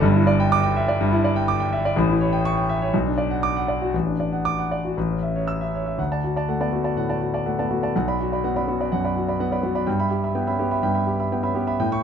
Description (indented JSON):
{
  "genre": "classical, virtuoso piano study",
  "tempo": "124 BPM",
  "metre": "4/4",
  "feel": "rubato",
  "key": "D major",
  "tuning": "A4 = 440 Hz",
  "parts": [
    { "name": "warm concert grand piano", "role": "solo", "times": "0.0-12.0 s", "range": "G1 to E6", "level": "-20 LUFS", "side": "equal", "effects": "none" }
  ],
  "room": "light reverb",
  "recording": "dark, warm production",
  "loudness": "-20 LUFS",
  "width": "side -8 dB against mid",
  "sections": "0.0-6.0 A section; 6.0-12.0 B section",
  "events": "none",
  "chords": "0.0 Em7/G; 2.0 A7; 2.9 Bm; 3.9 D/A; 5.0 A; 6.0 D; 7.9 Bm; 9.9 Em/G"
}